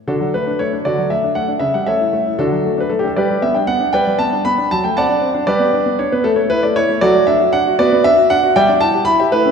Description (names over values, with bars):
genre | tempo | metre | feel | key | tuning
classical-period piano sonatina | 78 BPM (dotted quarters) | 6/8 | straight | D major | A4 = 440 Hz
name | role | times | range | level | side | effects
warm grand piano | solo | 0.1-9.5 s | C#3 to B5 | -13 LUFS | equal | none
room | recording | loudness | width
wet church reverb, RT60 2.7 s | recorded in a church or concert hall | -13 LUFS | side -6 dB against mid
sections
0.1-9.5 A section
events
none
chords
0.1 D; 1.6 A7/C#; 2.4 D; 3.2 G; 4.7 D7/F#; 5.5 G; 6.2 A5; 7.0 D/F#; 7.8 Bm; 8.6 Em7/G